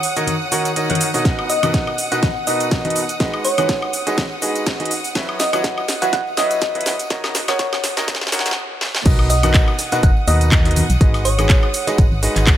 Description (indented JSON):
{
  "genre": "piano house",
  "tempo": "123 BPM",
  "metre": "4/4",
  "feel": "swing 55% on 16ths",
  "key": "B major",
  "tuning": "A4 = 440 Hz",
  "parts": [
    { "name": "clear studio string section", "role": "sustained chords", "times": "0.0-12.6 s", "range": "F#5 to D#6", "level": "-27 LUFS", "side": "right 1 dB", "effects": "sidechain pumping" },
    { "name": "house drum kit", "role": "drums", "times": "0.0-12.6 s", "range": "cabasa, crash cymbal, handclaps, hi-hat, snare drum, woodblock", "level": "-22 LUFS", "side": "equal", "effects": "high-pass filter on hats, high-pass filter on perc, high-pass filter on snare, high-pass filter on cymbals, high-pass filter on room" },
    { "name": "clear baby grand piano", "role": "riff", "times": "0.2-12.6 s", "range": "B2 to F#5", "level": "-23 LUFS", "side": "right 1 dB", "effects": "sidechain pumping, low-pass filter, tape echo" },
    { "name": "tambourine and congas", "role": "percussion", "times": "0.2-12.6 s", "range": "none", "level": "-29 LUFS", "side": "left 4 dB", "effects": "none" },
    { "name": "electronic kick drum", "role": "drums", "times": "1.3-12.6 s", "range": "none", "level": "-16 LUFS", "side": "equal", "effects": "none" },
    { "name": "thumb-piano-like synth pluck", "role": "melody", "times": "1.5-11.9 s", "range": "C#5 to F#5", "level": "-23 LUFS", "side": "equal", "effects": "lush chorus, vintage 12-bit sampler grit, tape echo" },
    { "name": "organ-like FM bass", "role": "bass", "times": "9.1-12.6 s", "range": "F#1 to D#2", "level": "-17 LUFS", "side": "equal", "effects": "sidechain pumping" },
    { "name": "breakbeat sampler-style drum kit", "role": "drums", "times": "9.1-12.6 s", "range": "hi-hat, snare drum, tambourine", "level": "-31 LUFS", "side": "right 1 dB", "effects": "none" }
  ],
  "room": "light reverb",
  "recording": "high-pass filter",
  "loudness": "-15 LUFS",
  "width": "side -12 dB against mid",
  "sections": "0.0-9.1 A section; 9.1-12.6 B section",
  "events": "build-up 0.0-9.1; drum fill 1.3-8.6, 8.8; stop 8.6-9.1; drop 9.1-12.6",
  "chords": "0.0 D#m7; 1.3 Bmaj7; 3.2 G#m7; 4.9 F#7sus4; 7.1 D#m7; 9.1 Bmaj7; 11.0 G#m7"
}